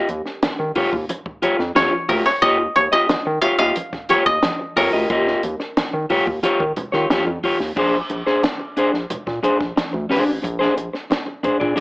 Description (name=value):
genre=funk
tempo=90 BPM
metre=4/4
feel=straight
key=unclear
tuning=A4 = 440 Hz
part: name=koto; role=melody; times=0.0-6.7 s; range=G4 to F5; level=-18 LUFS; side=equal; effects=none
part: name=electric guitar at the edge of break-up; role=accompaniment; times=0.0-11.8 s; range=D4 to Eb5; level=-19 LUFS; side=left 1 dB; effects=none
part: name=round analog bass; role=bass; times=0.1-11.8 s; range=Ab1 to Eb3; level=-25 LUFS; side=equal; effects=none
part: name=compact cocktail drum kit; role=drums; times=0.1-11.8 s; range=crash cymbal, hi-hat, kick drum, snare drum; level=-25 LUFS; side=equal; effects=none
part: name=congas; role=percussion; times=0.1-11.8 s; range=none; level=-32 LUFS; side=right 1 dB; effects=none
room=moderate club reverb, RT60 0.6 s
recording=AM radio sound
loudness=-17 LUFS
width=side -24 dB against mid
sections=0.0-7.8 A section; 7.8-11.8 B section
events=none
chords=0.0 Eb9; 7.8 Bb9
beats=0.43 1.10 1.76 | 2.43 3.10 3.77 4.43 | 5.10 5.77 6.44 7.10 | 7.77 8.44 9.11 9.77 | 10.44 11.11 11.77